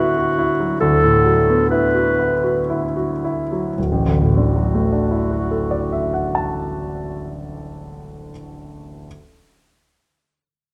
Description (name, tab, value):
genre	classical, impressionist duo for clarinet and grand piano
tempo	52-71 BPM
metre	3/4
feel	rubato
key	D major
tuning	A4 = 440 Hz
part	mellow clarinet	melody	0.0-7.6 s	F#4 to B4	-22 LUFS	equal	none
part	warm concert grand piano	accompaniment	0.0-9.1 s	D1 to A5	-22 LUFS	equal	none
room	moderate scoring stage reverb, RT60 1.5 s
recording	close, detailed microphones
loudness	-19 LUFS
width	mono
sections	0.0-3.8 A section; 3.8-6.9 B section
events	slowing down 0.0-3.8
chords	0.0 D69; 3.8 Dadd9